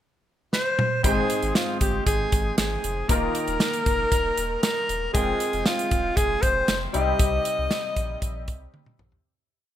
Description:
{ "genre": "1980s-style pop", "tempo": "117 BPM", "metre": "4/4", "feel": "straight", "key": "unclear", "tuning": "A4 = 441 Hz", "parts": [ { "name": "breathy alto saxophone", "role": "melody", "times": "0.5-8.7 s", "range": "F4 to Eb5", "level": "-25 LUFS", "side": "equal", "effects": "none" }, { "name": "modern studio drum kit", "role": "drums", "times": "0.5-9.2 s", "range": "hi-hat, kick drum, snare drum, toms", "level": "-25 LUFS", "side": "equal", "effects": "none" }, { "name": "clear concert grand piano", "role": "accompaniment", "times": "1.0-9.3 s", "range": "Ab2 to G5", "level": "-29 LUFS", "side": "left 2 dB", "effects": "analog chorus" }, { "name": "warm sub bass", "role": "bass", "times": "1.0-9.2 s", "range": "Eb1 to C2", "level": "-31 LUFS", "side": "equal", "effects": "none" } ], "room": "moderate plate reverb, RT60 2.0 s", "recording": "bright 1980s-style digital production", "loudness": "-21 LUFS", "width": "side -11 dB against mid", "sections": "0.0-1.0 pickup bar; 1.0-9.2 pre-chorus", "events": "drum fill 0.5-1.0, 8.7-9.2; fade-out 7.2-9.2", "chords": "0.0 N.C.; 1.0 Ab; 3.1 Ebsus2; 5.1 Fmadd9; 6.9 Cm", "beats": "0.02 0.53 | 1.04 1.55 2.07 2.58 | 3.09 3.61 4.12 4.63 | 5.14 5.66 6.17 6.68 | 7.20 7.71 8.22 8.73" }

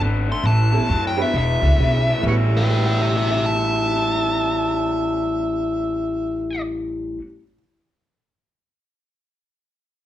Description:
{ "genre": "electric blues shuffle", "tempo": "133 BPM", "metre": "4/4", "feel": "swing 63% on 8ths", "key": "A mixolydian", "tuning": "A4 = 440 Hz", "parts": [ { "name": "raw garage guitar", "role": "riff", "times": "0.0-7.2 s", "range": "E2 to F#4", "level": "-24 LUFS", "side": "left 3 dB", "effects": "overdrive" }, { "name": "upright bass", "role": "bass", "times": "0.0-7.1 s", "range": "E1 to F#2", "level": "-22 LUFS", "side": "equal", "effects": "none" }, { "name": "dark smooth lead guitar", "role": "melody", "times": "0.3-6.6 s", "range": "G4 to C6", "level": "-24 LUFS", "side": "left 1 dB", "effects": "overdrive" }, { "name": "honky-tonk upright piano", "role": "accompaniment", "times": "0.7-7.6 s", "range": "A2 to A6", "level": "-28 LUFS", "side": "right 5 dB", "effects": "none" }, { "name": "overdriven harmonica", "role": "second line", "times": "2.3-6.6 s", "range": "B4 to E5", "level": "-26 LUFS", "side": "right 4 dB", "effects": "none" } ], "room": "moderate large studio reverb, RT60 0.9 s", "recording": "band playing live in one room", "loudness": "-18 LUFS", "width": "side -12 dB against mid", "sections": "0.0-2.2 A section; 2.2-5.8 B section", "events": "none", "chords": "0.4 A9; 1.3 E9; 2.2 A13", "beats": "0.00 | 0.45 0.90 1.35 1.80 | 2.25 2.70 3.15 3.60 | 4.05 4.50 4.95 5.40" }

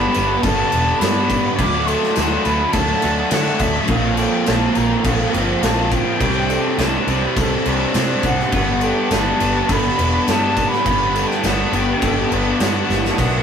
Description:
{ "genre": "rock, shoegaze and dream pop", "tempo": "104 BPM", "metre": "4/4", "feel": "straight", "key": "G major", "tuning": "A4 = 440 Hz", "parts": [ { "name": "bright concert flute", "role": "melody", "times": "0.0-13.4 s", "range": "E5 to D6", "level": "-23 LUFS", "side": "right 1 dB", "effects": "none" }, { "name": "twelve-string electric guitar", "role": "arpeggios", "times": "0.0-13.4 s", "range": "A4 to F5", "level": "-29 LUFS", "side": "right 2 dB", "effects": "none" }, { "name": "biting overdriven guitar", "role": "riff", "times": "0.0-13.4 s", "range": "G2 to D4", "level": "-22 LUFS", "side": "left 3 dB", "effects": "none" }, { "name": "raw garage guitar", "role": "riff", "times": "0.0-13.4 s", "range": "G2 to D4", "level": "-21 LUFS", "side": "right 2 dB", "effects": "overdrive" }, { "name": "vintage muted picked electric bass", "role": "bass", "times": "0.0-13.4 s", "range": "E1 to D3", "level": "-23 LUFS", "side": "left 1 dB", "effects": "none" }, { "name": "big rock drum kit", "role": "drums", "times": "0.1-13.3 s", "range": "crash cymbal, kick drum, snare drum", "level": "-22 LUFS", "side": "equal", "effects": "none" }, { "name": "tambourine", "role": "percussion", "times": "0.1-13.3 s", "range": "none", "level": "-36 LUFS", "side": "left 5 dB", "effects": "none" } ], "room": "wet booth ambience, RT60 0.3 s", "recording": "rough rehearsal-room recording, warm saturation", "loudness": "-15 LUFS", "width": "side -7 dB against mid", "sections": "0.0-13.2 A section", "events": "drum fill 12.9", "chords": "0.0 Gadd9; 1.6 D; 3.9 Bbsus2; 6.2 Csus2; 8.5 Gadd9; 10.9 G", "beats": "0.43 1.01 | 1.59 2.17 2.74 3.32 | 3.90 4.48 5.05 5.63 | 6.21 6.79 7.37 7.95 | 8.53 9.11 9.70 10.28 | 10.86 11.44 12.02 12.60 | 13.18" }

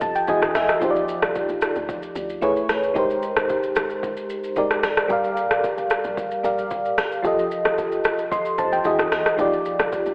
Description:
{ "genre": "amapiano", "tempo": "112 BPM", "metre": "4/4", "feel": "straight", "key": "Eb major", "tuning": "A4 = 441 Hz", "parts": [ { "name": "FM electric piano with tremolo", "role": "accompaniment", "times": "0.0-10.1 s", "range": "E3 to C6", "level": "-24 LUFS", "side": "equal", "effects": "none" }, { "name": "deep log drum bass", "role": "bass", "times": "0.0-10.1 s", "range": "F1 to E2", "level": "-41 LUFS", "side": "equal", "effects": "none" }, { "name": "deep house drum kit", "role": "drums", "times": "0.0-10.1 s", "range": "hi-hat, kick drum, rim click, shaker, toms", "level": "-27 LUFS", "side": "equal", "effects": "overdrive" } ], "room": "wet lush hall reverb, RT60 2.0 s", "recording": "dreamy mix soaked in reverb, telephone sound", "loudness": "-22 LUFS", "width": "mono", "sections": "0.0-10.1 A section", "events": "FM electric piano fill 0.0-0.8", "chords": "0.3 Emaj9; 0.8 Ebmaj9; 2.4 Amaj9; 3.0 Abmaj9; 5.1 Gm7; 7.2 F9; 8.9 Emaj9; 9.4 Ebmaj9", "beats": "0.28 | 0.82 1.35 1.89 2.42 | 2.96 3.50 4.03 4.57 | 5.10 5.64 6.17 6.71 | 7.25 7.78 8.32 8.85 | 9.39 9.92" }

